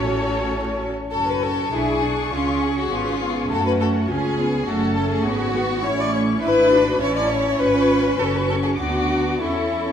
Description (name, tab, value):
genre	quick classical-period movement for string orchestra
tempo	101 BPM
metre	2/4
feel	rubato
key	F# minor, A major from 5.8 s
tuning	A4 = 445 Hz
part	rich chamber violin section	melody	0.0-9.9 s	C#5 to D6	-32 LUFS	left 6 dB	none
part	rich chamber violin section	second line	0.0-9.9 s	E4 to D5	-22 LUFS	left 3 dB	none
part	clear studio viola section	accompaniment	0.0-9.9 s	B3 to A4	-24 LUFS	right 1 dB	none
part	rich chamber cello section	bass	0.0-9.9 s	A2 to E4	-25 LUFS	right 1 dB	none
part	rich studio double bass section	bass	0.0-9.9 s	F#1 to F#2	-28 LUFS	right 1 dB	none
room	wet scoring stage reverb, RT60 1.8 s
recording	vinyl crackle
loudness	-18 LUFS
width	side -8 dB against mid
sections	0.0-1.1 A section; 1.1-9.9 A section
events	none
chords	0.0 F#m/A; 1.1 F#m; 1.7 G#dim/B; 2.3 C#7; 3.5 F#m; 4.1 C#7; 4.7 F#m; 5.8 A; 6.4 E7/G#; 7.0 A; 7.6 C#7/G#; 8.2 F#5; 8.8 Bm/D